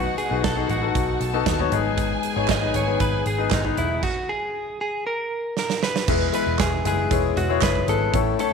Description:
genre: piano-driven pop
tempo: 117 BPM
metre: 4/4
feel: straight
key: unclear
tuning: A4 = 441 Hz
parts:
  - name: direct-recorded clean electric guitar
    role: melody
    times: 0.0-8.5 s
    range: D#4 to D#5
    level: -26 LUFS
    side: right 2 dB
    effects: none
  - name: rich studio violin section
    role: second line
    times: 0.0-4.0 s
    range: F#4 to A5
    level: -30 LUFS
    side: right 2 dB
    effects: tape echo
  - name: clear baby grand piano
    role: accompaniment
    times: 0.0-8.5 s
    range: G#2 to C#5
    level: -24 LUFS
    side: left 13 dB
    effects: none
  - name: vintage muted picked electric bass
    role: bass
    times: 0.0-8.3 s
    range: E1 to D#2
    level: -26 LUFS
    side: right 1 dB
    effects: none
  - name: huge arena drum kit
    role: drums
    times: 0.2-8.5 s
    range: crash cymbal, hi-hat, kick drum, snare drum, toms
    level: -26 LUFS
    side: right 5 dB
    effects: none
  - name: group handclap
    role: percussion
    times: 2.5-7.7 s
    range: none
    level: -32 LUFS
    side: right 15 dB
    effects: none
room: moderate spring reverb, RT60 1.4 s, small room ambience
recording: 1960s-style stereo with parts hard left and right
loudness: -20 LUFS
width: side -5 dB against mid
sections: 0.0-6.1 A section; 6.1-8.5 B section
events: stop 4.0-6.1; drum fill 5.6-6.1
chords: 0.0 B; 1.7 G#m; 4.0 N.C.; 6.1 E

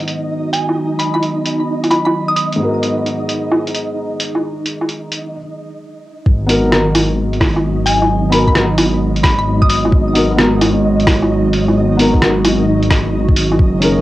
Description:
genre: future garage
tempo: 131 BPM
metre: 4/4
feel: swing 67% on 16ths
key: G# minor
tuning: A4 = 439 Hz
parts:
  - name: felt-muted upright piano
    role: accompaniment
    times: 0.0-14.0 s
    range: G#2 to A#4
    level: -19 LUFS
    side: left 1 dB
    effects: sidechain pumping, cassette tape, tape echo
  - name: warbly tape-like pad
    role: sustained chords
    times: 0.0-14.0 s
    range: D#3 to G#4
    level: -19 LUFS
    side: right 1 dB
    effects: chorus, built-in reverb, vintage 12-bit sampler grit, sidechain pumping, cassette tape
  - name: lo-fi sampler-style drum kit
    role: drums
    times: 0.0-13.9 s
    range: hi-hat, rim click, woodblock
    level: -17 LUFS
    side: equal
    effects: low-pass filter on hats, cassette tape, low-pass filter on perc, low-pass filter on snare, low-pass filter on room
  - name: flickering grainy texture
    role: texture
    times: 0.0-14.0 s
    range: D#4 to D#5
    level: -23 LUFS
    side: right 1 dB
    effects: built-in reverb, cassette tape
  - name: mallet-like synth pluck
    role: melody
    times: 0.5-2.5, 7.9-9.8 s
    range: G#5 to D#6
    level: -20 LUFS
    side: left 1 dB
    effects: chorus, cassette tape, tape echo
  - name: dark detuned saw bass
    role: bass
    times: 6.3-14.0 s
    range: F#1 to G#1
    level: -18 LUFS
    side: equal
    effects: sidechain pumping
  - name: electronic kick drum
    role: drums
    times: 6.3-13.7 s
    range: none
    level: -13 LUFS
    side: equal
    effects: cassette tape
room: moderate spring reverb, RT60 1.4 s, digital ambience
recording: home recording on cassette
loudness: -12 LUFS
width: side -16 dB against mid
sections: 0.0-6.3 A section; 6.3-14.0 B section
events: filter sweep on ambient pad 0.0-6.3; break 5.3-6.3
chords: 0.0 G#m7

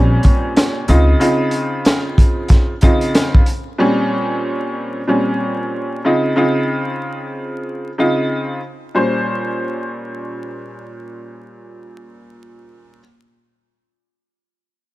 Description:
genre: hip hop, boom-bap hip-hop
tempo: 93 BPM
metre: 4/4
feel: swing 62% on 16ths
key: Bb dorian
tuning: A4 = 444 Hz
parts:
  - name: warm upright piano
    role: accompaniment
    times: 0.0-13.0 s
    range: Bb2 to C5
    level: -18 LUFS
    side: equal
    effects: cassette tape, high-pass filter, low-pass filter
  - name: upright bass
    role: bass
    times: 0.0-1.1 s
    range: Bb1 to Db2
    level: -12 LUFS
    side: equal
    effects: none
  - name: crunchy breakbeat drum kit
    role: drums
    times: 0.2-3.6 s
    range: hi-hat, kick drum, snare drum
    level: -13 LUFS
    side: equal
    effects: none
room: small room ambience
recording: vinyl crackle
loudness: -14 LUFS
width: side -18 dB against mid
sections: 0.0-8.9 A section; 8.9-11.5 B section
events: none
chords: 0.0 Bbm69; 0.9 Dbmaj9; 3.8 Bbm69; 6.0 Dbmaj9; 8.9 Bbm69

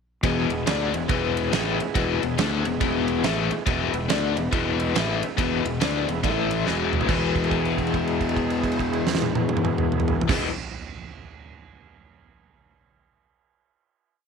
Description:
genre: blues rock power trio and southern rock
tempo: 140 BPM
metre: 4/4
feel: swing 63% on 8ths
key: E mixolydian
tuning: A4 = 440 Hz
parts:
  - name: overdriven tonewheel organ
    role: sustained chords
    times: 0.2-10.5 s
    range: E3 to A4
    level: -32 LUFS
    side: right 11 dB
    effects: slow rotary speaker, chorus vibrato
  - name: biting overdriven guitar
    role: riff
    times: 0.2-10.5 s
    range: E2 to D4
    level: -24 LUFS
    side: left 10 dB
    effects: tremolo
  - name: fuzz fingered electric bass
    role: bass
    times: 0.2-10.4 s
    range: E1 to D2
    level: -29 LUFS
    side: right 2 dB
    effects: overdrive
  - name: huge arena drum kit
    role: drums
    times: 0.2-10.4 s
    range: crash cymbal, kick drum, ride cymbal, snare drum, toms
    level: -27 LUFS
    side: right 5 dB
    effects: none
room: light reverb, studio ambience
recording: 1960s-style stereo with parts hard left and right, faint mains hum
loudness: -21 LUFS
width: side -6 dB against mid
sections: 0.2-7.1 riff; 7.1-10.5 final chord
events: drum fill 6.7-7.1; held note 7.1-10.3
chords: 0.2 E; 6.2 A5; 6.7 E

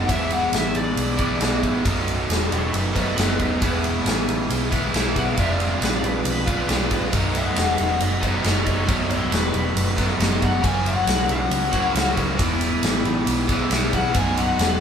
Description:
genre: blues rock power trio and southern rock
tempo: 137 BPM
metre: 4/4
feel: straight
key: B mixolydian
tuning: A4 = 439 Hz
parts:
  - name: lead guitar through a small cranked amp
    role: melody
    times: 0.0-14.8 s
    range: D#4 to G#5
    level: -26 LUFS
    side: left 3 dB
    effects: wah, overdrive
  - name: overdriven tonewheel organ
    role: sustained chords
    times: 0.0-14.8 s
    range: B3 to C5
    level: -34 LUFS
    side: right 2 dB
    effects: none
  - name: overdriven electric guitar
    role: riff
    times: 0.0-14.8 s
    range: B1 to F#4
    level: -23 LUFS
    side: equal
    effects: none
  - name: vintage muted picked electric bass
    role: bass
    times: 0.0-14.8 s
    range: B0 to C#2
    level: -26 LUFS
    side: equal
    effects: none
  - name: huge arena drum kit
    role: drums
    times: 0.1-14.7 s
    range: kick drum, ride cymbal, snare drum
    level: -24 LUFS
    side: equal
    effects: none
room: moderate large studio reverb, RT60 0.9 s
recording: band playing live in one room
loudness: -19 LUFS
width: side -7 dB against mid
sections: 0.0-14.8 A section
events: lead electric guitar solo 0.0-14.8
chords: 0.1 E7; 1.9 B7; 3.6 E7; 5.4 Fdim7; 7.1 B7; 10.6 F#7; 12.4 E7; 14.2 B7

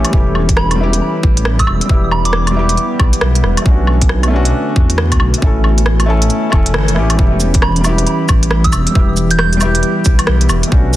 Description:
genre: future garage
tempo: 136 BPM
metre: 4/4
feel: swing 63% on 16ths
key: E dorian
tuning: A4 = 440 Hz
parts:
  - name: felt-muted upright piano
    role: accompaniment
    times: 0.0-11.0 s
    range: G3 to A4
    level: -19 LUFS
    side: left 2 dB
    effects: sidechain pumping, tape echo
  - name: warbly tape-like pad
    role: sustained chords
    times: 0.0-11.0 s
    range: D3 to C#5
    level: -20 LUFS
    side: right 1 dB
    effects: chorus, built-in reverb, sidechain pumping
  - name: swelling detuned saw bass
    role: bass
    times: 0.0-11.0 s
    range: E1 to E2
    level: -14 LUFS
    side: equal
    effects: sidechain pumping
  - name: organic electronic drum kit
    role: drums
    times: 0.0-11.0 s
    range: cabasa, hi-hat, rim click, woodblock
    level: -19 LUFS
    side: equal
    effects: soft clipping on snare
  - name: electronic kick drum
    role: drums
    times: 0.1-10.8 s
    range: none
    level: -12 LUFS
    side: equal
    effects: none
  - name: soft synth bell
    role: melody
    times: 0.6-2.7, 7.6-9.8 s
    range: B5 to G6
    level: -21 LUFS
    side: right 3 dB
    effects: chorus, digital delay
room: light reverb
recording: dense, heavily limited modern master, vinyl crackle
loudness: -10 LUFS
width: side -14 dB against mid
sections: 0.0-7.2 A section; 7.2-11.0 A section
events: band accent 6.7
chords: 0.1 Em; 3.7 Bm7; 5.4 A; 7.2 Em

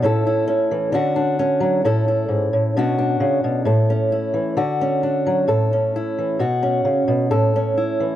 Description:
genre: highlife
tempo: 132 BPM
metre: 4/4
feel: straight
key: A major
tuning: A4 = 440 Hz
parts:
  - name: fingerpicked old ladder-braced acoustic guitar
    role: solo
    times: 0.0-8.2 s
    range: G#2 to A4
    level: -17 LUFS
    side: equal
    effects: tape echo
room: light reverb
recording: dry, close 1970s-style studio recording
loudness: -17 LUFS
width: side -12 dB against mid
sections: 0.0-3.7 A section; 3.7-8.2 B section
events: none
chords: 0.0 A; 0.9 Dmaj7; 1.8 A; 2.8 Bmadd9; 3.7 A; 4.6 Dmaj7; 5.5 A; 6.4 Bsus2; 7.3 A

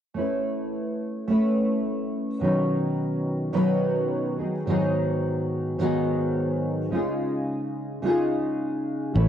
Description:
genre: acoustic pop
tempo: 107 BPM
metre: 4/4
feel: straight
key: unclear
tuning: A4 = 440 Hz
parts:
  - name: nylon-string guitar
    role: accompaniment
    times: 0.1-9.3 s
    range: Ab2 to B4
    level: -23 LUFS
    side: equal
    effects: double-tracked left and right, cassette tape
  - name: fingered electric bass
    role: bass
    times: 9.2-9.3 s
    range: A1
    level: -18 LUFS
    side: equal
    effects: none
room: moderate spring reverb, RT60 2.3 s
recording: home recording on cassette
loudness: -23 LUFS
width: side -10 dB against mid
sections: 0.2-9.2 A section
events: none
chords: 0.2 Aadd9; 2.4 Cbadd9; 4.4 Abm7; 6.9 Dbadd9

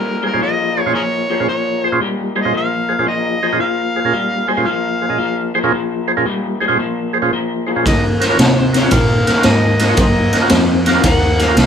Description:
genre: electric blues shuffle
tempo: 113 BPM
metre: 4/4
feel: swing 66% on 8ths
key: Bb minor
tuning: A4 = 441 Hz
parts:
  - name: overdriven harmonica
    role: melody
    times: 0.0-11.7 s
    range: Ab4 to Ab5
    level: -20 LUFS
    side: equal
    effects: none
  - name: electric guitar through a small old amp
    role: riff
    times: 0.0-11.7 s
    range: Bb2 to C4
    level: -18 LUFS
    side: left 3 dB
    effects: harmonic tremolo
  - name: percussive tonewheel organ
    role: accompaniment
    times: 0.2-11.6 s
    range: Bb2 to Eb5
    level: -19 LUFS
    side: right 4 dB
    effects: slow rotary speaker
  - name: vintage muted fingered electric bass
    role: bass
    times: 7.9-11.7 s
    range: C2 to Eb3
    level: -18 LUFS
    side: right 1 dB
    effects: none
  - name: raw garage drum kit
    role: drums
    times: 7.9-11.7 s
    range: kick drum, ride cymbal, snare drum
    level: -15 LUFS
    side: right 1 dB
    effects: none
room: light reverb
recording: band playing live in one room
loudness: -13 LUFS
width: side -8 dB against mid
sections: 0.0-11.7 A section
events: none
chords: 0.0 Bbm7; 7.8 Ebm7

